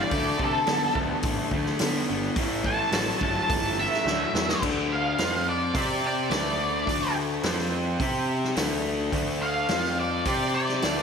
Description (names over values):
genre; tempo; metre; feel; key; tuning
blues rock power trio and southern rock; 106 BPM; 4/4; straight; unclear; A4 = 439 Hz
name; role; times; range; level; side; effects
octave-fuzz lead guitar; melody; 0.0-11.0 s; A4 to A5; -27 LUFS; equal; wah, distortion
fuzz guitar; riff; 0.0-11.0 s; A2 to C5; -28 LUFS; left 1 dB; distortion, slapback echo
fuzz picked electric bass; bass; 0.0-11.0 s; G1 to D3; -31 LUFS; right 1 dB; overdrive
vintage drum kit; drums; 0.1-11.0 s; crash cymbal, hi-hat, kick drum, snare drum; -30 LUFS; equal; none
room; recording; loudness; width
moderate lush hall reverb, RT60 1.7 s, studio reverb; big arena sound; -23 LUFS; side -6 dB against mid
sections
0.0-4.6 A section; 4.6-11.0 B section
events
lead electric guitar solo 0.0-4.6; drum fill 4.1-4.6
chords
0.1 D5; 2.4 A5; 4.6 D5; 5.2 F5; 5.7 C5; 6.3 D5; 7.4 F5; 8.0 C5; 8.6 D5; 9.7 F5; 10.3 C5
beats
| 0.13 0.69 1.25 1.81 | 2.37 2.93 3.49 4.06 | 4.62 5.18 5.75 6.31 | 6.87 7.44 8.00 8.57 | 9.13 9.70 10.26 10.83